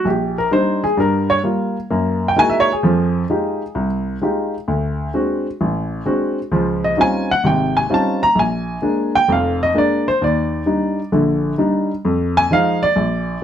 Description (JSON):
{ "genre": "solo jazz", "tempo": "130 BPM", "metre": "4/4", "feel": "swing 67% on 8ths", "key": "Eb major", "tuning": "A4 = 440 Hz", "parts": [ { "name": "warm baby grand piano", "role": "solo", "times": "0.0-13.4 s", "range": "F1 to Bb5", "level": "-15 LUFS", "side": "equal", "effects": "none" } ], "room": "moderate studio reverb, RT60 0.6 s", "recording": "none", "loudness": "-15 LUFS", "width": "side -9 dB against mid", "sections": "0.0-13.4 A section", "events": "grand piano solo 0.0-13.4", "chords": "0.0 Ebmaj7; 1.0 Gm7; 1.9 Gb13; 2.8 Fm9; 4.7 D7#11; 6.5 Dbmaj9#11; 8.4 Bb7; 10.2 Ebmaj7; 12.0 Fm7", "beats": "0.04 0.51 | 0.97 1.43 1.89 2.35 | 2.82 3.28 3.74 4.20 | 4.67 5.13 5.59 6.05 | 6.51 6.98 7.44 7.90 | 8.36 8.82 9.28 9.74 | 10.20 10.66 11.12 11.58 | 12.04 12.50 12.96 13.42" }